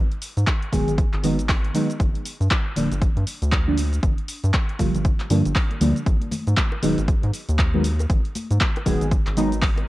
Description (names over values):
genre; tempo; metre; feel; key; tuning
deep house; 118 BPM; 4/4; swing 60% on 16ths; unclear; A4 = 437 Hz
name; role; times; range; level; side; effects
rubbery square bass; bass; 0.0-9.8 s; D1 to G#2; -23 LUFS; equal; sidechain pumping
punchy analog drum machine; drums; 0.1-9.9 s; cabasa, handclaps, hi-hat; -28 LUFS; equal; overdrive, cassette tape
electronic kick drum; drums; 0.5-9.7 s; none; -21 LUFS; equal; overdrive, cassette tape
deep mellow chord stab; stabs; 0.7-9.5 s; D3 to G#4; -23 LUFS; equal; chorus, phaser, tape echo
congas and bongos; percussion; 6.3-9.9 s; none; -32 LUFS; left 2 dB; sidechain pumping on perc
room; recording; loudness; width
digital ambience; home recording on cassette; -19 LUFS; side -17 dB against mid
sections
0.0-9.9 A section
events
none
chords
0.0 G#m7; 2.0 Gm7; 6.1 G#m7